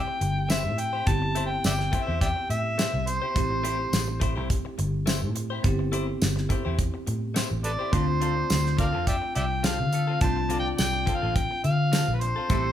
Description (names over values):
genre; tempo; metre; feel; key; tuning
straight-eighth soul blues; 105 BPM; 4/4; swing 54% on 16ths; A minor; A4 = 441 Hz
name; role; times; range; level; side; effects
overdriven harmonica; melody; 0.0-12.7 s; A4 to A5; -28 LUFS; equal; none
bell-like tine electric piano; accompaniment; 0.0-12.7 s; A3 to G4; -34 LUFS; right 1 dB; fast stereo tremolo
vintage muted fingered electric bass; bass; 0.0-12.7 s; G1 to D3; -28 LUFS; equal; none
direct-recorded clean electric guitar; stabs; 0.1-12.7 s; A2 to C5; -36 LUFS; left 5 dB; none
damped 70s drum kit; drums; 0.2-12.6 s; hi-hat, kick drum, snare drum, tambourine; -27 LUFS; equal; none
bright horn section; sustained chords; 7.9-12.7 s; C4 to D5; -38 LUFS; right 1 dB; none
room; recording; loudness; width
moderate large studio reverb, RT60 0.8 s; band playing live in one room; -23 LUFS; side -11 dB against mid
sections
0.0-12.7 A section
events
none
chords
0.0 Am7; 7.9 Dm7